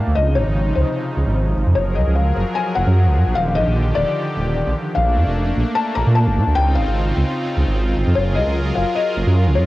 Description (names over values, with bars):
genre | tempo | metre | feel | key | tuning
IDM | 150 BPM | 4/4 | straight | unclear | A4 = 440 Hz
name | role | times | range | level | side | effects
felt-muted upright piano | melody | 0.0-9.6 s | C5 to Bb5 | -22 LUFS | left 5 dB | vintage 12-bit sampler grit, cassette tape, shimmer reverb, analog delay
warm analog pad | sustained chords | 0.0-9.7 s | C3 to Bb4 | -23 LUFS | equal | chorus, tremolo, vintage 12-bit sampler grit, cassette tape, shimmer reverb
dark detuned saw bass | bass | 0.0-9.6 s | Eb1 to Bb2 | -17 LUFS | right 1 dB | none
room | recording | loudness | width
light reverb, studio reverb | home recording on cassette | -16 LUFS | side -17 dB against mid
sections
0.0-9.7 A section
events
none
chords
0.2 Dbmaj9; 1.8 Gbmaj9; 3.4 Ebmaj9; 5.0 Bbmaj7; 6.6 Dbmaj9; 8.2 Gbmaj9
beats
| 0.17 0.57 0.97 1.37 | 1.77 2.17 2.57 2.97 | 3.37 3.77 4.17 4.57 | 4.97 5.37 5.77 6.17 | 6.57 6.97 7.37 7.77 | 8.17 8.57 8.97 9.37